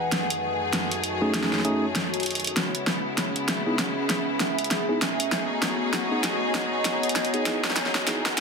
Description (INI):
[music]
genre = glitch hop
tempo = 98 BPM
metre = 4/4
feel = swing 60% on 16ths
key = F# dorian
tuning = A4 = 440 Hz
[part]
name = clear symphonic string section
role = sustained chords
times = 0.0-8.4 s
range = E2 to G#4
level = -30 LUFS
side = left 2 dB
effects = none
[part]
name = warbly tape-like pad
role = texture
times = 0.0-8.4 s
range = E3 to G#5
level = -29 LUFS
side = equal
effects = chorus, built-in reverb
[part]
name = pop drum kit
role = drums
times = 0.1-8.4 s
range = hi-hat, snare drum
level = -26 LUFS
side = equal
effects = none
[part]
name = mellow tine electric piano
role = stabs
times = 1.2-8.2 s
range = A3 to G#4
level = -29 LUFS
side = right 1 dB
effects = vintage 12-bit sampler grit, tape echo
[sound]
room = moderate plate reverb, RT60 1.8 s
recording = dense, heavily limited modern master, high-pass filter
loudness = -23 LUFS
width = side -4 dB against mid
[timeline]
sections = 0.0-8.4 A section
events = build-up 0.0-8.4; drum fill 0.0-8.4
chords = 0.1 F#m69; 2.6 C#m7; 5.0 B13; 7.5 Emaj7